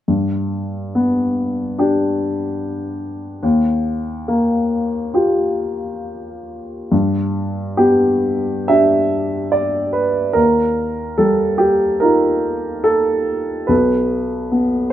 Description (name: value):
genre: neoclassical minimalist piano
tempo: 71 BPM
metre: 4/4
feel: uneven beats, rubato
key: unclear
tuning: A4 = 440 Hz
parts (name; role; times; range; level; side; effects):
- warm baby grand piano; solo; 0.1-14.9 s; B1 to E5; -16 LUFS; equal; none
room: light reverb, small room ambience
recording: rough home demo mix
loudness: -15 LUFS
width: side -12 dB against mid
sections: 0.1-6.9 A section; 6.9-14.9 B section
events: none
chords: 0.1 G; 3.4 Ebadd9; 6.9 G; 10.4 Ebadd9; 13.7 N.C.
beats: | 0.09 0.95 1.78 2.59 | 3.42 4.28 5.13 6.00 | 6.92 7.77 8.68 9.53 | 10.36 11.20 12.03 12.87 | 13.70 14.51